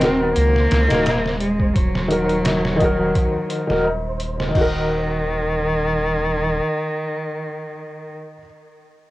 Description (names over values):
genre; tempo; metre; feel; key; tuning
trip hop; 86 BPM; 4/4; swing 54% on 16ths; Eb dorian; A4 = 440 Hz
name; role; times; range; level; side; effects
rich cello; melody; 0.0-8.1 s; Eb3 to C4; -22 LUFS; equal; cassette tape, tape echo, plate reverb
felt-muted upright piano; accompaniment; 0.0-8.5 s; Eb3 to Bb4; -21 LUFS; left 1 dB; tremolo, vintage 12-bit sampler grit, cassette tape, tape echo, plate reverb
soft dub sub bass; bass; 0.0-6.6 s; Eb1 to Db2; -24 LUFS; equal; none
trip hop sampler-style drum kit; drums; 0.0-4.7 s; crash cymbal, hi-hat, kick drum, snare drum; -23 LUFS; equal; cassette tape
flickering grainy texture; texture; 0.2-4.6 s; C5; -34 LUFS; right 3 dB; none
tabla; percussion; 0.9-4.0 s; none; -30 LUFS; left 1 dB; none
room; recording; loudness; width
light reverb; home recording on cassette; -17 LUFS; side -17 dB against mid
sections
0.0-4.5 A section; 4.5-7.3 B section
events
none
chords
0.0 Ebm